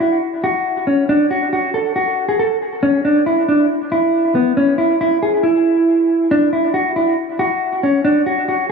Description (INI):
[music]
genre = hip hop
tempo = 138 BPM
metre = 4/4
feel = half-time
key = unclear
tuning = A4 = 443 Hz
[part]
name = mellow electric guitar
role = solo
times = 0.0-8.7 s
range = B3 to A4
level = -14 LUFS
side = equal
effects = dub echo
[sound]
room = moderate spring reverb, RT60 1.2 s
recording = echo-heavy mix, small room reverb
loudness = -14 LUFS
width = side -5 dB against mid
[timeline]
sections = 0.0-8.7 A section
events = none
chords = none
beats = 0.22 0.66 | 1.09 1.52 1.96 2.39 | 2.83 3.26 3.70 4.13 | 4.57 5.00 5.44 5.87 | 6.31 6.74 7.18 7.61 | 8.05 8.48